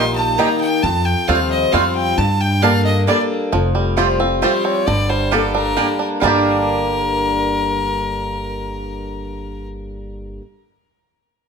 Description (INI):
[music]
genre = bluegrass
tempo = 134 BPM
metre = 3/4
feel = straight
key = G minor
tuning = A4 = 444 Hz
[part]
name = clear fiddle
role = melody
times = 0.0-9.7 s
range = A4 to C6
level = -22 LUFS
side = left 1 dB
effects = tape echo
[part]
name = lap resonator guitar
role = second line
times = 0.0-3.3 s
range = D5 to C6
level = -27 LUFS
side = left 2 dB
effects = none
[part]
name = picked swing-style acoustic guitar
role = accompaniment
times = 0.0-10.4 s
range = F2 to A4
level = -21 LUFS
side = left 3 dB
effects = none
[part]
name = bluegrass banjo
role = arpeggios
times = 0.0-10.4 s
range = D3 to G4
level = -22 LUFS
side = right 5 dB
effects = none
[part]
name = mandolin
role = stabs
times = 0.0-10.4 s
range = A3 to A5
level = -22 LUFS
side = right 7 dB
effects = none
[part]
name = upright bass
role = bass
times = 0.0-10.4 s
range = F1 to G2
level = -22 LUFS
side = equal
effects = none
[sound]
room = moderate large studio reverb, RT60 0.8 s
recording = none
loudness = -15 LUFS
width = side -6 dB against mid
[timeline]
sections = 0.0-3.5 A section; 3.5-6.2 B section; 6.2-8.9 C section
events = none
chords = 0.0 Eb; 0.8 Fadd9; 2.2 Gmadd9; 3.5 Fadd9; 4.9 Gmadd9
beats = 0.39 | 0.83 1.28 1.73 | 2.18 2.63 3.08 | 3.53 3.97 4.42 | 4.87 5.32 5.77 | 6.22 6.67 7.12 | 7.57 8.01 8.46